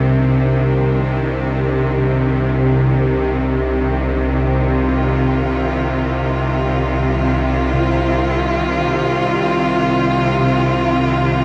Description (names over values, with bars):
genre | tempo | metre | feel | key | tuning
dark ambient drone | free time | none | none | C minor | A4 = 440 Hz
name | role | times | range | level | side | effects
dark studio cello section | sustained chords | 0.0-11.4 s | C3 to F4 | -22 LUFS | equal | none
bronze singing bowl | arpeggios | 0.0-11.4 s | C3 to Bb4 | -28 LUFS | equal | tape echo
bowed-like drone | drone | 0.0-11.4 s | C2 to C3 | -19 LUFS | equal | built-in reverb
room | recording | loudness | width
wet huge ambient reverb, RT60 7.9 s | cassette tape | -17 LUFS | mono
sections
0.0-11.4 A section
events
fade-in on cello section 0.0-11.4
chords
0.0 Cmadd9